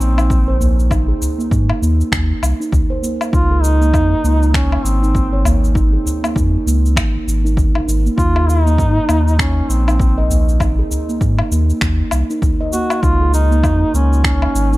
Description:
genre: organic downtempo.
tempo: 99 BPM.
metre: 4/4.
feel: swing 59% on 16ths.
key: unclear.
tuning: A4 = 440 Hz.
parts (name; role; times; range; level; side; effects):
warm duduk; melody; 0.0-14.8 s; C4 to Gb4; -21 LUFS; right 1 dB; tape echo.
warm sub bass; bass; 0.0-14.8 s; Ab1 to Ab2; -14 LUFS; equal; tube saturation, sidechain pumping.
electronic shaker, woodblock and finger snaps; drums; 0.0-14.8 s; none; -23 LUFS; left 2 dB; overdrive, small room ambience.
steel tongue drum; arpeggios; 0.2-14.8 s; Bb3 to Eb5; -21 LUFS; right 1 dB; digital delay.
electronic kick drum; drums; 0.3-14.4 s; none; -19 LUFS; equal; overdrive, small room ambience.
udu; percussion; 0.6-12.6 s; none; -21 LUFS; equal; none.
room: studio ambience.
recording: dark, warm production.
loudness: -13 LUFS.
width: side -18 dB against mid.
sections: 0.0-14.8 A section.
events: none.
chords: 0.0 Eb5; 3.3 Db5; 8.2 Eb5; 13.0 Db6.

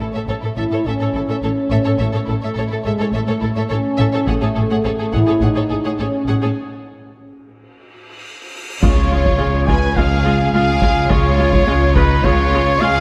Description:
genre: cinematic, epic orchestral film score.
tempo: 105 BPM.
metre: 4/4.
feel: straight.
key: Db mixolydian from 8.8 s.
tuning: A4 = 439 Hz.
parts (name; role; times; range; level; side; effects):
rich symphonic violin section; melody; 0.0-13.0 s; Eb4 to F#5; -29 LUFS; equal; none.
warm symphonic violin section; second line; 0.0-13.0 s; E4 to Ab5; -31 LUFS; equal; none.
clear symphonic viola section; accompaniment; 0.0-12.9 s; Ab3 to A4; -28 LUFS; equal; none.
warm French horn section; sustained chords; 0.0-13.0 s; Ab3 to F4; -24 LUFS; equal; none.
clear symphonic double bass section; bass; 0.0-13.0 s; A1 to Db2; -23 LUFS; equal; none.
rich symphonic cello section; bass; 0.0-13.0 s; A2 to Db3; -25 LUFS; equal; none.
solo taiko drums; drums; 4.3-5.4, 8.8-12.8 s; none; -22 LUFS; equal; none.
cymbal swell and impact; sound effects; 8.1-11.1 s; none; -28 LUFS; equal; none.
mellow silver concert flute; second line; 8.8-13.0 s; Cb5 to Ab5; -27 LUFS; equal; none.
warm trumpet; stabs; 8.8-13.0 s; Cb5 to Ab5; -23 LUFS; equal; none.
room: moderate concert hall reverb, RT60 2.5 s.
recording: none.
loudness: -17 LUFS.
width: mono.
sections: 0.0-8.8 A section; 8.8-13.0 A section.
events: break 6.6-8.8; cymbal swell 8.1-8.8; impact 8.8-11.1.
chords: 0.0 A; 4.3 F#madd9/A (rootless); 6.6 N.C.; 8.8 Db.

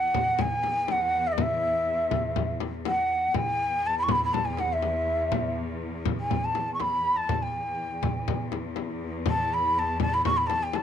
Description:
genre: Arabic maqam ensemble.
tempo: 122 BPM.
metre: 4/4.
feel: straight.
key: E maqam rast.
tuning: A4 = 440 Hz.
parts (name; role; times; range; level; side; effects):
breathy ney; melody; 0.0-10.8 s; D#5-49c to C#6; -25 LUFS; equal; none.
rich studio cello section; drone; 0.0-10.8 s; E2; -34 LUFS; left 1 dB; none.
darbuka; percussion; 0.0-10.8 s; none; -34 LUFS; right 7 dB; none.
frame drum; percussion; 0.1-10.8 s; none; -31 LUFS; left 8 dB; none.
room: light reverb.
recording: 1960s-style stereo with parts hard left and right.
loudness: -24 LUFS.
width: side -9 dB against mid.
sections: 0.0-10.8 A section.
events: none.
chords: none.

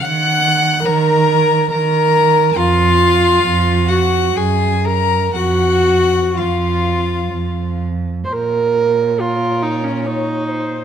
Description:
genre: classical, slow romantic movement for string quartet.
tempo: 58-73 BPM.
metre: 3/4.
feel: rubato.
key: Bb minor.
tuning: A4 = 441 Hz.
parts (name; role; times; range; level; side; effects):
rich violin; melody; 0.0-10.8 s; Db5 to Gb6; -20 LUFS; left 12 dB; none.
dark violin; second line; 0.0-10.8 s; F4 to Gb5; -22 LUFS; left 4 dB; none.
warm viola; accompaniment; 0.0-10.8 s; Db4 to Gb5; -17 LUFS; right 2 dB; none.
dark cello; bass; 0.0-10.8 s; F2 to Eb3; -18 LUFS; right 4 dB; none.
room: moderate scoring stage reverb, RT60 1.4 s.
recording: close, detailed microphones.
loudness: -13 LUFS.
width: side -8 dB against mid.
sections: 0.0-8.3 A section; 8.3-10.8 B section.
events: none.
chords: 0.0 Ebm; 2.6 N.C.; 4.4 Gb; 5.4 N.C.; 8.3 Bbm.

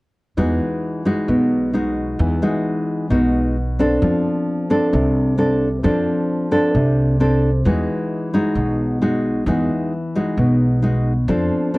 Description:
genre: bossa nova.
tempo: 132 BPM.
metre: 4/4.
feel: straight.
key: unclear.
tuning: A4 = 440 Hz.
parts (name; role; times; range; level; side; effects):
nylon-string guitar; accompaniment; 0.4-11.8 s; B2 to A4; -18 LUFS; equal; none.
upright bass; bass; 0.4-11.5 s; B1 to F2; -20 LUFS; right 1 dB; none.
room: moderate studio reverb, RT60 0.5 s.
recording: dark, warm production.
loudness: -16 LUFS.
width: side -22 dB against mid.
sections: 0.4-11.8 A section.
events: none.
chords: 0.4 Emaj9; 4.0 F6; 7.7 Emaj9.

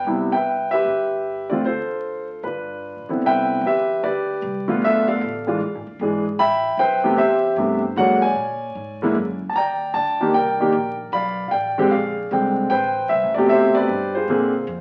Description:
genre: jazz.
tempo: 152 BPM.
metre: 4/4.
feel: swing 65% on 8ths.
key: C major.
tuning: A4 = 440 Hz.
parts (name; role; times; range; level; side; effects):
warm concert grand piano; melody; 0.0-14.8 s; B2 to B5; -21 LUFS; equal; none.
upright bass; bass; 0.0-14.8 s; E1 to Bb2; -37 LUFS; equal; none.
room: wet studio reverb, RT60 0.9 s.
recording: very old 78 rpm record, vinyl crackle.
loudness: -21 LUFS.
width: mono.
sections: 0.0-3.2 A section; 3.2-14.8 B section.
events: none.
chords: 0.1 Cmaj7; 1.6 Dm7; 2.4 G9; 3.2 Cmaj9; 4.8 Bm7b5; 5.6 E7b9; 6.4 Am9; 8.0 Bb7alt; 9.5 Ebmaj7; 11.1 Bm7b5; 11.9 Bb13; 12.7 Am9; 14.3 Bb9.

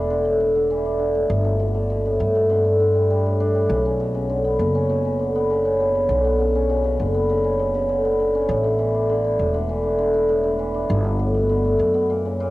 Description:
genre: folktronica.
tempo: 100 BPM.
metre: 4/4.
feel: straight.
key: B minor.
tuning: A4 = 441 Hz.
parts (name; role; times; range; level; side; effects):
cimbalom; arpeggios; 0.0-12.5 s; A2 to E4; -19 LUFS; equal; analog delay.
upright bass; bass; 0.0-12.5 s; E1 to G2; -24 LUFS; equal; none.
room: light reverb, small room ambience.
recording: home recording on cassette.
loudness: -18 LUFS.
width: side -18 dB against mid.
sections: 0.0-12.5 A section.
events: none.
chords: 0.0 Asus4; 1.3 Gadd9; 3.7 Bmadd9; 8.5 Asus4; 10.9 Gadd9.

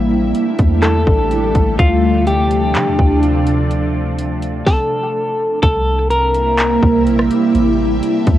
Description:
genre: hip hop, atmospheric cloud-rap.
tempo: 125 BPM.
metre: 4/4.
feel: half-time.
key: D minor.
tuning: A4 = 442 Hz.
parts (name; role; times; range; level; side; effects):
ethereal airy pad; sustained chords; 0.0-8.4 s; C3 to E4; -16 LUFS; right 1 dB; ensemble chorus, built-in reverb, phaser, sidechain pumping.
soft 808-style bass; bass; 0.0-8.4 s; A1 to D3; -18 LUFS; equal; none.
trap drum kit; drums; 0.3-8.4 s; handclaps, hi-hat, kick drum, rim click, snare drum; -16 LUFS; equal; cassette tape.
clean electric guitar; melody; 0.8-7.0 s; F4 to Bb4; -17 LUFS; left 1 dB; harmonic tremolo, cassette tape, tape echo.
room: moderate studio reverb, RT60 0.5 s.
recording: home recording on cassette.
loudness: -12 LUFS.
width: side -13 dB against mid.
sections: 0.0-5.6 A section; 5.6-8.4 B section.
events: none.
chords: 0.0 A7sus4; 1.8 Dm7; 5.6 C7; 7.5 A7sus4.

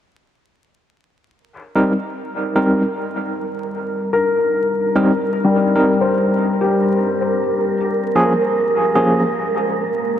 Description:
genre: ambient.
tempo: 75 BPM.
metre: 4/4.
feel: straight.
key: unclear.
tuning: A4 = 440 Hz.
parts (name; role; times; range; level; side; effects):
deep dark ambient pad; sustained chords; 3.0-10.2 s; G3 to Bb4; -27 LUFS; left 1 dB; chorus, built-in reverb.
wind-like tuned noise texture; texture; 2.2-10.2 s; Bb4; -22 LUFS; right 2 dB; built-in reverb.
overdriven tine electric piano; stabs; 1.8-9.2 s; F3 to Bb4; -19 LUFS; equal; fast tremolo, low-pass filter, dub echo.
felt-muted upright piano; arpeggios; 4.1-8.5 s; G3 to C5; -19 LUFS; left 3 dB; low-pass filter, tape echo.
room: moderate huge ambient reverb, RT60 4.2 s.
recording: vinyl crackle.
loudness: -15 LUFS.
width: side -10 dB against mid.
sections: 1.4-10.2 A section.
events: fade-in on ambient pad 1.4-10.2; filter sweep on felt piano 1.4-10.2.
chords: 1.4 Cm7; 7.8 Bbm7.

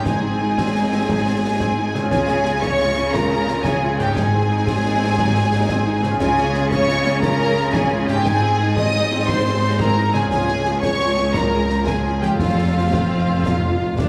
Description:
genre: cinematic, heroic adventure film score.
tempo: 117 BPM (dotted quarters).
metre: 12/8.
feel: straight.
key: unclear.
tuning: A4 = 442 Hz.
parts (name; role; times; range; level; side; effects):
rich symphonic violin section; melody; 0.0-14.1 s; F5 to Eb6; -26 LUFS; equal; none.
rich symphonic violin section; second line; 0.0-14.1 s; F4 to Eb5; -27 LUFS; equal; none.
rich symphonic viola section; accompaniment; 0.0-14.1 s; F3 to A4; -28 LUFS; equal; none.
concert harp; arpeggios; 0.0-14.1 s; Ab2 to A4; -30 LUFS; equal; none.
rich symphonic cello section; bass; 0.0-14.1 s; Db2 to Db3; -25 LUFS; equal; none.
rich symphonic double bass section; bass; 0.0-14.1 s; F1 to Db2; -27 LUFS; equal; none.
concert snare drum, concert bass drum and clash cymbals; drums; 0.1-14.1 s; none; -28 LUFS; equal; none.
timpani; percussion; 12.4-14.1 s; F2; -29 LUFS; equal; none.
room: wet recital hall reverb, RT60 1.6 s.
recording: small room ambience.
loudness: -19 LUFS.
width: mono.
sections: 0.0-14.1 A section.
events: timpani fill 12.4-14.1.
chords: 0.1 Ab; 2.1 Db; 4.2 Ab; 6.2 Db; 8.3 Ab; 10.3 Db; 12.4 F.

